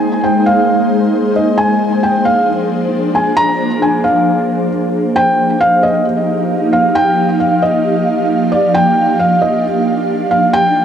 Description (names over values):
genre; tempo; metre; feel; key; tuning
hip hop; 134 BPM; 4/4; half-time; unclear; A4 = 444 Hz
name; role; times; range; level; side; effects
felt-muted upright piano; melody; 0.0-10.8 s; D5 to Bb5; -14 LUFS; equal; digital delay
ethereal airy pad; sustained chords; 0.0-10.8 s; F3 to F5; -14 LUFS; equal; ensemble chorus, built-in reverb
room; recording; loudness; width
moderate huge ambient reverb, RT60 3.8 s; dark, warm production; -11 LUFS; side -8 dB against mid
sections
0.0-10.8 A section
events
none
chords
0.0 Abadd9; 1.6 Bb9; 5.2 Ebadd9; 8.7 Gm7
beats
0.24 0.68 1.13 | 1.58 2.03 2.48 2.92 | 3.37 3.82 4.27 4.71 | 5.16 5.61 6.06 6.50 | 6.95 7.40 7.85 8.30 | 8.74 9.19 9.64 10.09 | 10.54